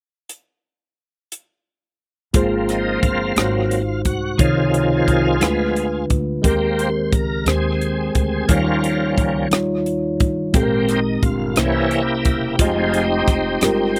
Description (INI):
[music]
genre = slow gospel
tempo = 58 BPM (dotted quarters)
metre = 6/8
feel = straight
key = Ab major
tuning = A4 = 440 Hz
[part]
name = crisp fusion drum kit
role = drums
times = 0.3-14.0 s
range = hi-hat, kick drum, rim click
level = -21 LUFS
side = equal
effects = none
[part]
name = mellow tine electric piano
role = accompaniment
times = 2.3-14.0 s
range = Ab2 to Eb5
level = -22 LUFS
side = equal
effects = phaser
[part]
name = bright tonewheel organ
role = sustained chords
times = 2.3-14.0 s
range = C3 to C5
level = -24 LUFS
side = equal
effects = slow rotary speaker, overdrive, chorus vibrato
[part]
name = upright bass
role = bass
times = 2.3-14.0 s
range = E1 to Eb2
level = -28 LUFS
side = equal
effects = none
[sound]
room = little or no reverb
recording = recorded outdoors, with no room sound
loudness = -19 LUFS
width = mono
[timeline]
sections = 0.3-2.3 A section; 2.3-14.0 B section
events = tonewheel organ solo 2.3-14.0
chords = 0.3 N.C.; 2.3 Ab69; 3.4 Ab7; 4.4 Dbmaj9; 5.4 Ddim7; 6.4 Abmaj9; 8.5 Eb9; 10.5 Abmaj9; 11.6 C7b9; 12.6 Fm9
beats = | 0.29 1.32 | 2.34 3.36 | 4.39 5.41 | 6.44 7.46 | 8.49 9.52 | 10.54 11.57 | 12.59 13.62